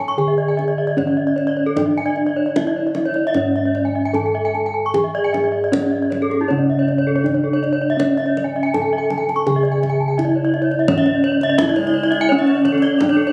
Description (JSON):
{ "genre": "Balinese gamelan", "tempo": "76-85 BPM", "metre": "4/4", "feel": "straight", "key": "C# pelog", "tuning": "A4 = 440 Hz", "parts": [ { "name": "gamelan-type bronze metallophone", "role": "melody", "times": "0.0-13.3 s", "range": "C#4 to C#5", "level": "-21 LUFS", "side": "equal", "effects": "none" }, { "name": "gamelan-type bronze metallophone", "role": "arpeggios", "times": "0.0-13.3 s", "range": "G#4-30c to A5-20c", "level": "-28 LUFS", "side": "equal", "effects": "none" }, { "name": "gamelan-type bossed gongs", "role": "bass", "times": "0.0-13.3 s", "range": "C#2 to A4-20c", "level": "-27 LUFS", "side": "equal", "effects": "none" }, { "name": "gamelan-type bronze metallophone", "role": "arpeggios", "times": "0.1-13.3 s", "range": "E4-30c to C#6", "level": "-26 LUFS", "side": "equal", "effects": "none" }, { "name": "kendang", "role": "percussion", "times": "0.2-13.2 s", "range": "none", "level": "-29 LUFS", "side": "equal", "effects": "none" }, { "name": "breathy bright wooden-headed alto flute", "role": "second line", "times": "11.7-13.3 s", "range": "G#3-29c to D4+26c", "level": "-31 LUFS", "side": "equal", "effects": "none" } ], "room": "moderate recital hall reverb, RT60 1.5 s", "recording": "recorded on a phone in the room, studio ambience, compression", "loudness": "-18 LUFS", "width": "mono", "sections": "0.0-10.9 A section; 10.9-13.3 B section", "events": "none", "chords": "none", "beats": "0.18 0.97 | 1.76 2.55 3.34 4.13 | 4.92 5.70 6.48 7.24 | 7.99 8.73 9.46 10.18 | 10.88 11.59 12.29 13.00" }